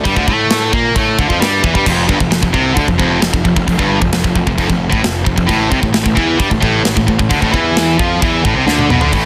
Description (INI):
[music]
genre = heavy metal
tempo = 132 BPM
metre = 4/4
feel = straight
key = A minor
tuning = A4 = 439 Hz
[part]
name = distorted electric guitar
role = riff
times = 0.0-9.3 s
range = F2 to Bb3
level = -21 LUFS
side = equal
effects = distortion
[part]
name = high-gain distorted guitar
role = riff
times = 0.0-9.3 s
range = F2 to Bb3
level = -18 LUFS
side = equal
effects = distortion
[part]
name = fuzz picked electric bass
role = bass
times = 0.0-9.3 s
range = F1 to Bb2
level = -21 LUFS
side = equal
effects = overdrive
[part]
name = tight metal drum kit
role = drums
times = 0.1-9.2 s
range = china cymbal, crash cymbal, hi-hat, kick drum, snare drum, toms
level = -19 LUFS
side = equal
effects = none
[sound]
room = little or no reverb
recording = dense, heavily limited modern master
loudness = -13 LUFS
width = mono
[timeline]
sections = 0.0-9.1 A section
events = drum fill 8.7-9.1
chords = 0.0 D5; 1.9 F5; 5.5 Am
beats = | 0.05 0.50 0.95 1.41 | 1.86 2.31 2.77 3.22 | 3.67 4.13 4.58 5.04 | 5.49 5.95 6.40 6.86 | 7.31 7.77 8.22 8.68 | 9.13